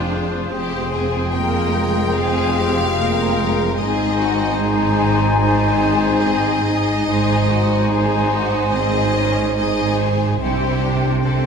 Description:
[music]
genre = cinematic, emotional film score for orchestra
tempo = 73 BPM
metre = 4/4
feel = rubato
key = unclear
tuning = A4 = 439 Hz
[part]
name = rich studio violin section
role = melody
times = 0.0-11.5 s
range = C5 to G5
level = -26 LUFS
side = left 4 dB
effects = none
[part]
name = dark clarinet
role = second line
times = 0.0-11.5 s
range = D4 to Ab4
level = -27 LUFS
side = left 2 dB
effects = none
[part]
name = flute section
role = second line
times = 0.0-11.5 s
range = G5 to G#5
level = -26 LUFS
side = left 1 dB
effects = none
[part]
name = mellow oboe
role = second line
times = 0.0-11.5 s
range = C5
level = -30 LUFS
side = left 1 dB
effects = none
[part]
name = warm studio violin section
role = second line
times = 0.0-11.5 s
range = F4 to A#4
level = -26 LUFS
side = left 3 dB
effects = none
[part]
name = warm studio viola section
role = accompaniment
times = 0.0-11.5 s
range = Ab3 to E4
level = -26 LUFS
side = right 3 dB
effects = none
[part]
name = mellow French horn section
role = sustained chords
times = 0.0-11.5 s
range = Ab3 to B#4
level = -24 LUFS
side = left 1 dB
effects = none
[part]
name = warm studio cello section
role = bass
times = 0.0-11.5 s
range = F2 to C3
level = -23 LUFS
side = right 2 dB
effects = none
[part]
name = warm studio double bass section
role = bass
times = 0.0-11.5 s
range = F1 to C2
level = -23 LUFS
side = right 2 dB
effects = none
[sound]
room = wet scoring stage reverb, RT60 1.7 s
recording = lossy compression artefacts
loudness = -16 LUFS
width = side -6 dB against mid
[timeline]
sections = 0.0-11.5 A section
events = none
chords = 0.0 Fmadd9; 3.8 G#; 10.4 Csus2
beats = | 0.51 1.33 2.16 2.97 | 3.79 4.60 5.42 6.26 | 7.09 7.92 8.75 9.58 | 10.41 11.24

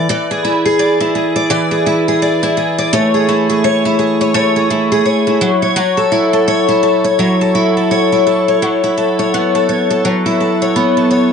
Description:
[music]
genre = indie pop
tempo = 84 BPM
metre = 4/4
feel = swing 60% on 16ths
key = F# minor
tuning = A4 = 440 Hz
[part]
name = picked steel-string acoustic guitar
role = solo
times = 0.0-11.3 s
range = E3 to D5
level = -11 LUFS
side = equal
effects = analog chorus, vibrato effect
[sound]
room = moderate studio reverb, RT60 0.6 s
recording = nothing above 10.8 kHz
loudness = -11 LUFS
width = side -6 dB against mid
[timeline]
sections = 0.0-8.6 A section; 8.6-11.3 B section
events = none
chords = 0.0 E7; 2.9 Amaj7; 5.4 F#m7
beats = | 0.08 0.79 1.50 2.21 | 2.92 3.63 4.34 5.06 | 5.77 6.48 7.19 7.90 | 8.62 9.33 10.04 10.76

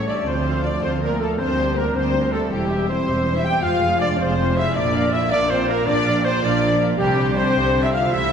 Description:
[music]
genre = cinematic, heroic adventure film score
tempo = 107 BPM (dotted quarters)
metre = 12/8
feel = straight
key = C mixolydian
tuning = A4 = 440 Hz
[part]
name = rich symphonic violin section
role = melody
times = 0.0-8.3 s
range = G4 to G5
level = -29 LUFS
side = left 5 dB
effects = none
[part]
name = clear clarinet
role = second line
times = 0.0-8.3 s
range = G4 to G5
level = -29 LUFS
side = left 1 dB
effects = none
[part]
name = mellow small flute group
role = second line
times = 0.0-8.3 s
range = G4 to G5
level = -28 LUFS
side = left 1 dB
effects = none
[part]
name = warm symphonic violin section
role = second line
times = 0.0-8.3 s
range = G4 to G5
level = -30 LUFS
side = left 3 dB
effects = none
[part]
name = rich symphonic viola section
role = accompaniment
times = 0.0-8.3 s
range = D4 to F5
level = -30 LUFS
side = right 2 dB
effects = none
[part]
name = dark French horn section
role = sustained chords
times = 0.0-8.3 s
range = G3 to G4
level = -25 LUFS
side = left 1 dB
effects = none
[part]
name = warm trombone section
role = sustained chords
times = 0.0-8.3 s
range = D3 to C4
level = -30 LUFS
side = right 2 dB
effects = none
[part]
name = concert harp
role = arpeggios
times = 0.0-8.3 s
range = A2 to C6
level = -31 LUFS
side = left 2 dB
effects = none
[part]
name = warm trumpet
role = stabs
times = 0.0-8.3 s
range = G4 to G5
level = -25 LUFS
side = right 1 dB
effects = none
[part]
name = clear symphonic double bass section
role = bass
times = 0.0-8.3 s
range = E1 to D2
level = -26 LUFS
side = right 2 dB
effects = none
[part]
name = rich symphonic cello section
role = bass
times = 0.0-8.3 s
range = D2 to C3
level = -28 LUFS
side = right 2 dB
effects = none
[sound]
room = wet scoring stage reverb, RT60 1.7 s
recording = heard from further back in the room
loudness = -17 LUFS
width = side -7 dB against mid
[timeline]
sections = 0.0-8.3 A section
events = none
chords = 0.3 Dm; 1.4 Gm/D; 2.5 C/E; 3.6 Fm; 4.8 Bb; 7.0 Csus2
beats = | 0.26 0.82 1.39 1.95 | 2.51 3.07 3.63 4.19 | 4.75 5.31 5.87 6.43 | 6.99 7.55 8.12

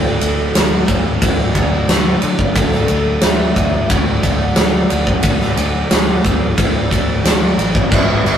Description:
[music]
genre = rock, shoegaze and dream pop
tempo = 90 BPM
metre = 4/4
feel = straight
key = unclear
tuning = A4 = 440 Hz
[part]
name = hollow clarinet-like synth lead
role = melody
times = 0.0-8.4 s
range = A4 to F#5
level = -24 LUFS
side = right 1 dB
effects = chorus, phaser
[part]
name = crunchy overdriven guitar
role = riff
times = 0.0-8.4 s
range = G2 to F#4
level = -20 LUFS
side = right 1 dB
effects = none
[part]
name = vintage muted picked electric bass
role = bass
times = 0.0-8.4 s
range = G1 to D3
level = -21 LUFS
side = left 1 dB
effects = none
[part]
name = huge arena drum kit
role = drums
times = 0.2-8.4 s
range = crash cymbal, kick drum, ride cymbal, snare drum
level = -14 LUFS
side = equal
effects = none
[sound]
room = light reverb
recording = rough rehearsal-room recording, warm saturation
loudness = -12 LUFS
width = side -9 dB against mid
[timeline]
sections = 0.0-7.9 A section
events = none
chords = 0.0 D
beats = 0.56 1.22 1.89 | 2.56 3.23 3.90 4.57 | 5.24 5.91 6.58 7.25 | 7.92

